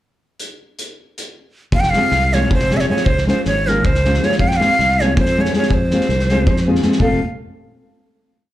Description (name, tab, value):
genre	balkan folk, Balkan wedding band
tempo	319 BPM (eighths)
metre	7/8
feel	straight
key	F minor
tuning	A4 = 442 Hz
part	loose indie drum kit	percussion	0.4-7.2 s	hi-hat, kick drum, snare drum	-21 LUFS	equal	none
part	breathy bright ney	melody	1.7-7.2 s	Bb4 to G5	-18 LUFS	right 1 dB	plate reverb, slapback echo
part	modern bright fingered electric bass	bass	1.7-7.2 s	F1 to F2	-19 LUFS	equal	none
part	nylon-string guitar	accompaniment	2.0-7.2 s	Ab3 to A4	-19 LUFS	left 1 dB	plate reverb, slapback echo
room	light reverb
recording	live gig heard through the venue's PA, club ambience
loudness	-13 LUFS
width	side -14 dB against mid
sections	0.4-1.7 pickup bar; 1.7-7.0 A section; 7.0-8.3 final chord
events	none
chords	0.4 N.C.; 1.7 Fm; 3.1 Db; 4.4 Fm; 7.0 F